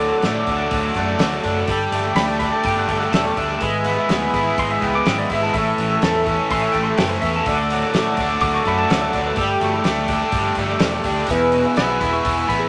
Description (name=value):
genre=folk rock and heartland rock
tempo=125 BPM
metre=4/4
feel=straight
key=unclear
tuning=A4 = 441 Hz
part: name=pedal steel guitar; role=second line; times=0.0-12.7 s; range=E4 to D6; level=-27 LUFS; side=equal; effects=none
part: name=picked twelve-string acoustic guitar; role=accompaniment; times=0.0-12.7 s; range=E2 to A4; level=-27 LUFS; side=equal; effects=none
part: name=accordion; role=sustained chords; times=0.0-12.7 s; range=G#4 to E6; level=-26 LUFS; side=equal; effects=light tremolo tuning
part: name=crunchy overdriven guitar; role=riff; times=0.0-12.7 s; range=E2 to E4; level=-25 LUFS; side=equal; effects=none
part: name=picked electric bass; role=bass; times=0.0-12.7 s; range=E1 to A2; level=-30 LUFS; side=equal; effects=none
part: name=natural country drum kit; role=drums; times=0.2-12.6 s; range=hi-hat, kick drum, snare drum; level=-27 LUFS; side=equal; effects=none
room=moderate studio reverb, RT60 0.7 s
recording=none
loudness=-19 LUFS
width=mono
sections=0.0-12.7 A section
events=none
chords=0.0 D; 1.7 Gsus2; 3.6 E/G#; 5.5 A; 7.5 D; 9.4 Gsus2; 11.3 E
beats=0.24 0.73 1.21 | 1.69 2.17 2.66 3.14 | 3.62 4.10 4.58 5.06 | 5.54 6.02 6.50 6.98 | 7.46 7.94 8.42 8.90 | 9.37 9.85 10.33 10.81 | 11.29 11.77 12.25